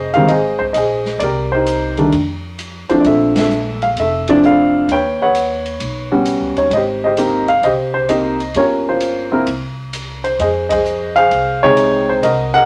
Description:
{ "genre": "jazz piano trio", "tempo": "131 BPM", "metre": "4/4", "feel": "swing 68% on 8ths", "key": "F minor", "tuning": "A4 = 440 Hz", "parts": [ { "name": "warm baby grand piano", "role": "melody", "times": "0.0-12.7 s", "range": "C3 to G5", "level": "-16 LUFS", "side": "equal", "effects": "none" }, { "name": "upright bass", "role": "bass", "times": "0.0-12.7 s", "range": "F1 to F2", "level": "-28 LUFS", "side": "equal", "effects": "none" }, { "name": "swinging big-band drum kit", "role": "drums", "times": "0.1-12.6 s", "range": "hi-hat, kick drum, ride cymbal, snare drum", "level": "-32 LUFS", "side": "equal", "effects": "none" } ], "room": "moderate studio reverb, RT60 0.6 s", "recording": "none", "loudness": "-15 LUFS", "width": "mono", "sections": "0.0-12.7 A section", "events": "band accent 3.3, 10.6", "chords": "0.0 Fm7; 1.2 Cm7; 2.1 F5; 3.0 Bbmaj7; 4.9 Eb7alt; 6.7 Abmaj9; 8.6 Gm7b5; 9.5 N.C.; 10.4 Fm7", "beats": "0.29 0.75 | 1.21 1.67 2.12 2.58 | 3.04 3.50 3.96 4.42 | 4.88 5.34 5.80 6.26 | 6.72 7.18 7.64 8.10 | 8.55 9.02 9.47 9.93 | 10.39 10.85 11.31 11.77 | 12.23" }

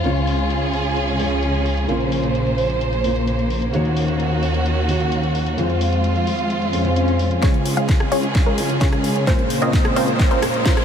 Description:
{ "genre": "EDM, festival progressive house", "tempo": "130 BPM", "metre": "4/4", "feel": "straight", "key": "Db major", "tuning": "A4 = 438 Hz", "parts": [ { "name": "felt-muted upright piano", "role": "accompaniment", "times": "0.0-10.8 s", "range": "Bb2 to Db5", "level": "-23 LUFS", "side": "equal", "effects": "wide subtle chorus, sidechain pumping, analog delay" }, { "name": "dark studio string section", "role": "sustained chords", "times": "0.0-10.8 s", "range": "Db3 to C5", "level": "-23 LUFS", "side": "right 1 dB", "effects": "sidechain pumping" }, { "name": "detuned saw bass", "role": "bass", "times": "0.0-10.8 s", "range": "Bb1 to F2", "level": "-24 LUFS", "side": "equal", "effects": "sidechain pumping, high-pass filter" }, { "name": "house drum kit", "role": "drums", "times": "0.0-10.8 s", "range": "hi-hat, rim click, snare drum", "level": "-28 LUFS", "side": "left 1 dB", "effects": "overdrive, low-pass filter on hats, low-pass filter on snare" }, { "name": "swell and riser", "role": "sound effects", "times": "6.7-10.8 s", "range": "none", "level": "-30 LUFS", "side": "left 4 dB", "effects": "none" }, { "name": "wide unison pluck", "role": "arpeggios", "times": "7.4-10.8 s", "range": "Bb4 to F5", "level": "-25 LUFS", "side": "equal", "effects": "sidechain pumping, analog delay" }, { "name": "supersaw stab", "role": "riff", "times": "7.4-10.8 s", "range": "Ab3 to F5", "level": "-23 LUFS", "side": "equal", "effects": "phaser, sidechain pumping, low-pass filter, analog delay" }, { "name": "electronic kick drum", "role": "drums", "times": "7.4-10.7 s", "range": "none", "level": "-18 LUFS", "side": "equal", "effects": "overdrive" } ], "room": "moderate huge ambient reverb, RT60 7.7 s", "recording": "dreamy mix soaked in reverb", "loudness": "-17 LUFS", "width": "side -8 dB against mid", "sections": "0.0-7.4 A section; 7.4-10.8 B section", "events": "swell 6.7-7.4; build-up 7.4-10.8; drum fill 7.4-10.8; filter sweep on supersaw synth 7.4-10.8", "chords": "0.0 Db; 1.9 Bbmadd9; 3.7 Ebm7; 5.6 Fm; 7.4 Db; 9.3 Bbmadd9", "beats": "| 0.04 0.50 0.96 1.43 | 1.89 2.35 2.81 3.27 | 3.73 4.20 4.66 5.12 | 5.58 6.04 6.50 6.96 | 7.43 7.89 8.35 8.81 | 9.27 9.73 10.20 10.66" }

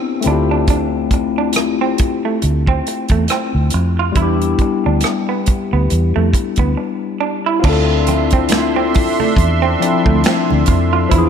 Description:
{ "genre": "R&B, neo-soul", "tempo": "69 BPM", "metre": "4/4", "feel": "swing 57% on 16ths", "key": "D dorian", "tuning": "A4 = 441 Hz", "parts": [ { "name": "barky tine electric piano", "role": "accompaniment", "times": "0.0-11.3 s", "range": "F3 to A4", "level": "-18 LUFS", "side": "left 8 dB", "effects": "overdrive, phaser" }, { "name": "warm soul drum kit", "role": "drums", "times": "0.2-11.3 s", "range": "crash cymbal, finger snaps, hi-hat, kick drum, rim click, snare drum", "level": "-18 LUFS", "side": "right 1 dB", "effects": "none" }, { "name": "electric guitar through a small old amp", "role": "second line", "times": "0.3-11.3 s", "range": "A3 to F4", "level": "-21 LUFS", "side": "right 8 dB", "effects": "none" }, { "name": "vintage muted fingered electric bass", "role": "bass", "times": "0.3-11.3 s", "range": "D2 to F2", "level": "-17 LUFS", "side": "right 1 dB", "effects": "none" }, { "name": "warm analog pad", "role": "sustained chords", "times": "7.6-11.3 s", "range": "D4 to D6", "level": "-20 LUFS", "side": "right 5 dB", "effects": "chorus, tremolo" }, { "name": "congas", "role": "percussion", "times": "7.6-11.3 s", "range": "none", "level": "-29 LUFS", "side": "right 10 dB", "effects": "none" } ], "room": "moderate plate reverb, RT60 2.4 s", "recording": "dreamy mix soaked in reverb", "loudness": "-13 LUFS", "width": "side -8 dB against mid", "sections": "0.0-7.6 A section; 7.6-11.3 B section", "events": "break 6.8-7.6", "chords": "0.2 Dm11; 4.2 Em7; 7.6 Dm9", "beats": "| 0.68 1.55 2.42 3.29 | 4.16 5.03 5.90 6.77 | 7.64 8.51 9.38 10.25 | 11.12" }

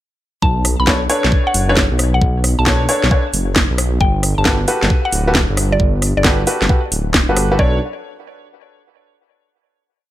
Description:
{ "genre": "UK garage, two-step garage", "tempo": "134 BPM", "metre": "4/4", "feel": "swing 66% on 16ths", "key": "B minor", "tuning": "A4 = 440 Hz", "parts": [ { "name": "mallet-like synth pluck", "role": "melody", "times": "0.4-7.8 s", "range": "D5 to B5", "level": "-22 LUFS", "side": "left 1 dB", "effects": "chorus, ping-pong delay" }, { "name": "dark detuned saw bass", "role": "bass", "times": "0.4-7.8 s", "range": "D1 to B1", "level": "-17 LUFS", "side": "equal", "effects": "tube saturation, sidechain pumping" }, { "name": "electronic kick drum", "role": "drums", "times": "0.4-7.7 s", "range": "none", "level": "-17 LUFS", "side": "equal", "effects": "none" }, { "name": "garage drum kit", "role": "drums", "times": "0.6-7.5 s", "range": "hi-hat, rim click, snare drum", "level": "-18 LUFS", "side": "equal", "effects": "none" }, { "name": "clear baby grand piano", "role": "stabs", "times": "0.9-7.8 s", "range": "D4 to C#5", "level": "-20 LUFS", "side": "equal", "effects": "ping-pong delay" } ], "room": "digital ambience", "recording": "none", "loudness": "-13 LUFS", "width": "side -14 dB against mid", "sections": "0.4-7.6 groove; 7.6-9.4 final chord", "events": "none", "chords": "0.4 Bm9; 4.0 Gmaj9; 7.6 Bm9", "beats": "| 0.42 0.87 1.32 1.77 | 2.22 2.66 3.11 3.56 | 4.01 4.46 4.90 5.35 | 5.80 6.25 6.69 7.14 | 7.59" }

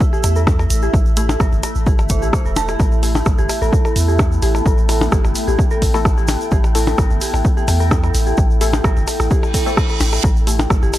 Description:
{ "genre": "minimal techno", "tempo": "129 BPM", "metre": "4/4", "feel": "straight", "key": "unclear", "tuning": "A4 = 440 Hz", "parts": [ { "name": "electronic kick drum", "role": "drums", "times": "0.0-10.8 s", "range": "none", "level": "-16 LUFS", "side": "equal", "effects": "none" }, { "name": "egg shaker", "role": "percussion", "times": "0.0-11.0 s", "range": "none", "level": "-31 LUFS", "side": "right 3 dB", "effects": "none" }, { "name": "deep dark ambient pad", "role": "texture", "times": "0.0-11.0 s", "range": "E4 to G5", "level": "-25 LUFS", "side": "equal", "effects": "chorus, built-in reverb, sidechain pumping" }, { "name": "swarming drone", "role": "texture", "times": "0.0-11.0 s", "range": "F#3 to F#5", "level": "-31 LUFS", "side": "left 2 dB", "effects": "built-in reverb, sidechain pumping" }, { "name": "dark detuned synth bell", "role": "riff", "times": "0.1-10.9 s", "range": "G4 to A5", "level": "-26 LUFS", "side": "equal", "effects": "chorus, phaser, vintage 12-bit sampler grit, sidechain pumping, analog delay" }, { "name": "punchy sub bass", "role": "bass", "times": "0.2-10.9 s", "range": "E1 to E2", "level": "-18 LUFS", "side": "equal", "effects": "sidechain pumping" }, { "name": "punchy analog drum machine", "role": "drums", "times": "0.2-11.0 s", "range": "hi-hat, rim click", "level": "-24 LUFS", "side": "equal", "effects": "none" }, { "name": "percussion blips", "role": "percussion", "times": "0.2-11.0 s", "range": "none", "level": "-23 LUFS", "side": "left 2 dB", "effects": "none" }, { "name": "filtered dub chord stab", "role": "stabs", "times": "1.2-10.6 s", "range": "A3 to A4", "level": "-27 LUFS", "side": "left 4 dB", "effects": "phaser, tape echo" }, { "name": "reverse cymbal", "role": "sound effects", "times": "9.5-10.2 s", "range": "none", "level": "-25 LUFS", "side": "right 6 dB", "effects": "none" } ], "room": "digital ambience", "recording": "dry, gritty hardware recording", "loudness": "-14 LUFS", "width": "side -14 dB against mid", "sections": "0.0-11.0 A section", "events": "reverse cymbal 9.5-10.2", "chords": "0.0 A5", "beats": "0.01 0.47 | 0.94 1.40 1.87 2.33 | 2.80 3.26 3.73 4.19 | 4.66 5.12 5.59 6.05 | 6.52 6.98 7.45 7.91 | 8.38 8.84 9.31 9.77 | 10.24 10.70" }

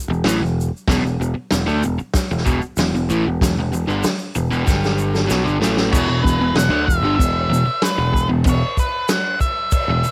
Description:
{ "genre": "garage rock duo or trio", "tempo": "95 BPM", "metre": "4/4", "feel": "straight", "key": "unclear", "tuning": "A4 = 444 Hz", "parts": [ { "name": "overdriven electric guitar", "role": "riff", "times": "0.1-10.1 s", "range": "E2 to A3", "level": "-23 LUFS", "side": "equal", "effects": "cassette tape" }, { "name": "modern bright picked electric bass", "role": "bass", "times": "0.1-10.1 s", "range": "E1 to D2", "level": "-24 LUFS", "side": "equal", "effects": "overdrive" }, { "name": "egg shaker", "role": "percussion", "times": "0.1-10.1 s", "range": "none", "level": "-36 LUFS", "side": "equal", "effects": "none" }, { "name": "vintage drum kit", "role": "drums", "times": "0.2-9.9 s", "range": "crash cymbal, hi-hat, kick drum, snare drum", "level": "-23 LUFS", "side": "equal", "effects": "cassette tape" }, { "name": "octave-fuzz lead guitar", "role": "melody", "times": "5.9-10.1 s", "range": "B4 to F#5", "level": "-24 LUFS", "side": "equal", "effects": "distortion, cassette tape" } ], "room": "little or no reverb", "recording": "home recording on cassette", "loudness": "-19 LUFS", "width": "mono", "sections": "0.0-5.9 A section; 5.9-10.1 B section", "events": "drum fill 4.7-5.9", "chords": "0.0 E5; 4.7 G5; 5.3 E5", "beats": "0.25 | 0.88 1.51 2.15 2.78 | 3.41 4.04 4.67 5.31 | 5.94 6.57 7.20 7.83 | 8.46 9.10 9.73" }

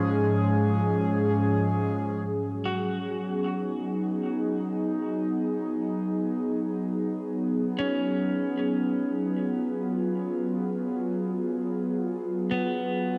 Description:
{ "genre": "ambient", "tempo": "free time", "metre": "none", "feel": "none", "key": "G# dorian", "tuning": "A4 = 444 Hz", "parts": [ { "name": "airy breathy pad", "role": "sustained chords", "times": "0.0-13.2 s", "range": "G#2 to G#4", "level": "-28 LUFS", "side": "equal", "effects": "chorus" }, { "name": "analog drone", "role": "drone", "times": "0.1-2.3 s", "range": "G#3 to D#4", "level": "-40 LUFS", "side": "equal", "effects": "none" }, { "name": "clean electric guitar", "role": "arpeggios", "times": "2.7-13.2 s", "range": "B3 to F#4", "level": "-35 LUFS", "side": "equal", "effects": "lush chorus, analog delay" } ], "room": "moderate plate reverb, RT60 3.1 s", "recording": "dreamy mix soaked in reverb, cassette tape", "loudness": "-28 LUFS", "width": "mono", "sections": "0.0-2.3 A section; 2.3-13.2 B section", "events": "none", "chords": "0.0 A#m7/G# (rootless); 2.3 G#m7", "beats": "free time" }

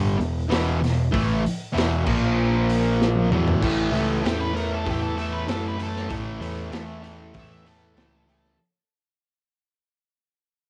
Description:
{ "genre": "garage rock duo or trio", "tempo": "97 BPM", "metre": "4/4", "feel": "straight", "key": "unclear", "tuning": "A4 = 439 Hz", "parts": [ { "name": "fuzz guitar", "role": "riff", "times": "0.0-8.6 s", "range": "E2 to A#3", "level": "-26 LUFS", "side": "equal", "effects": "distortion, cassette tape" }, { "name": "overdriven picked electric bass", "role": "bass", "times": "0.0-8.5 s", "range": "E1 to F#2", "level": "-30 LUFS", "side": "equal", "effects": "none" }, { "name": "raw garage drum kit", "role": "drums", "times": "0.2-8.5 s", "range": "crash cymbal, hi-hat, kick drum, snare drum, toms", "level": "-30 LUFS", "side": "equal", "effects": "cassette tape" }, { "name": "octave-fuzz lead guitar", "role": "melody", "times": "4.3-8.6 s", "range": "G4 to E5", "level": "-35 LUFS", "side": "equal", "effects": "distortion, cassette tape" } ], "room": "little or no reverb", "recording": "home recording on cassette", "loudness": "-23 LUFS", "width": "mono", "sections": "0.0-3.6 A section; 3.6-8.6 B section", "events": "drum fill 3.0-3.6; fade-out 3.6-8.6", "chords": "0.0 E5; 2.1 A#5; 3.3 E5; 3.6 A", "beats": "0.52 | 1.14 1.75 2.38 2.99 | 3.61 4.23 4.85 5.47 | 6.10 6.72 7.34 7.96" }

